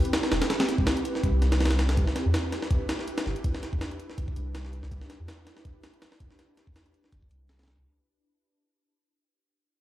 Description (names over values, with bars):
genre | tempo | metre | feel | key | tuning
drum and bass, jungle | 163 BPM | 4/4 | swing 55% on 16ths | unclear | A4 = 441 Hz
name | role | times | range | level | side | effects
jungle sampler-style drum kit | drums | 0.0-7.8 s | hi-hat, kick drum, snare drum | -27 LUFS | equal | none
soft dub sub bass | bass | 0.3-7.8 s | E1 to E2 | -26 LUFS | equal | none
room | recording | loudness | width
light reverb | played on a big sound system in a bare room, stone room reverb, vinyl crackle | -24 LUFS | side -14 dB against mid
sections
0.0-7.9 A section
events
fade-out 0.0-7.9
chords
none